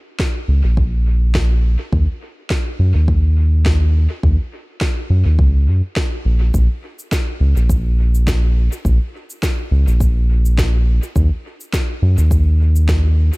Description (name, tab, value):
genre	ambient dub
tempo	104 BPM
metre	4/4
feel	swing 55% on 16ths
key	Bb minor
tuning	A4 = 440 Hz
part	electronic kick drum	drums	0.2-13.0 s	none	-19 LUFS	equal	none
part	electronic snare drum and shaker	drums	0.2-13.4 s	none	-28 LUFS	equal	dub echo
part	round analog bass	bass	0.5-13.3 s	Bb1 to Gb2	-13 LUFS	equal	none
room	little or no reverb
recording	none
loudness	-14 LUFS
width	side -24 dB against mid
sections	0.0-13.4 A section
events	none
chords	none